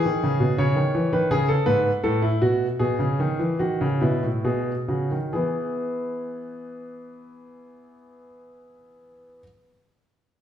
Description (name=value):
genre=classical, baroque-style two-part invention for grand piano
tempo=66-86 BPM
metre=3/4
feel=straight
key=E major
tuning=A4 = 441 Hz
part: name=warm concert grand piano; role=solo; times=0.0-9.4 s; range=G#2 to C#5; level=-21 LUFS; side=equal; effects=none
room=wet stone room reverb, RT60 1.2 s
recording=heard from further back in the room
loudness=-21 LUFS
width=side -10 dB against mid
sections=0.0-5.3 A section; 5.3-10.4 B section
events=slowing down 0.0-5.3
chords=0.0 E (rootless); 0.6 C#5; 2.0 F#m/A; 2.8 E/B; 4.4 B; 5.3 E